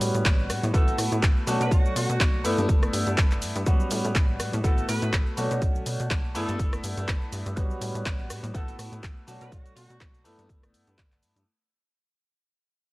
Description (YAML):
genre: filtered disco house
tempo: 123 BPM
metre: 4/4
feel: swing 56% on 16ths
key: B minor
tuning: A4 = 442 Hz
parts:
  - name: clear grand piano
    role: accompaniment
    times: 0.0-11.4 s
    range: G3 to F#4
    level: -30 LUFS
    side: equal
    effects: phaser, vintage 12-bit sampler grit, sidechain pumping
  - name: plucky analog bass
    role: bass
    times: 0.0-11.4 s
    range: G1 to B2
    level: -30 LUFS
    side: equal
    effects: sidechain pumping
  - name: punchy analog drum machine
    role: drums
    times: 0.0-11.5 s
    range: handclaps, hi-hat, rim click, shaker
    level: -31 LUFS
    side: equal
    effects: overdrive, sidechain pumping on perc, sidechain pumping on hats
  - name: egg shaker and congas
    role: percussion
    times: 0.1-11.5 s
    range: none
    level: -40 LUFS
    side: left 2 dB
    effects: none
  - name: electronic kick drum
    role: drums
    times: 0.3-11.1 s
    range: none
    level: -24 LUFS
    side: equal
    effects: none
  - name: warm horn section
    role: melody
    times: 0.7-10.2 s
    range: F#4 to B4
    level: -36 LUFS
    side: right 1 dB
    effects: vintage 12-bit sampler grit, sidechain pumping
room: small room reverb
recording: dry, gritty hardware recording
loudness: -23 LUFS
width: side -20 dB against mid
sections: 0.0-11.5 A section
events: drop 0.0-11.5; fade-out 3.7-11.5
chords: 0.0 A13; 0.7 B7sus4/A; 1.5 Bm7; 2.4 G69; 3.7 A13; 4.6 B7sus4/A; 5.4 Bm7; 6.3 G69; 7.6 A13; 8.5 B7sus4/A; 9.3 Bm7; 10.3 G69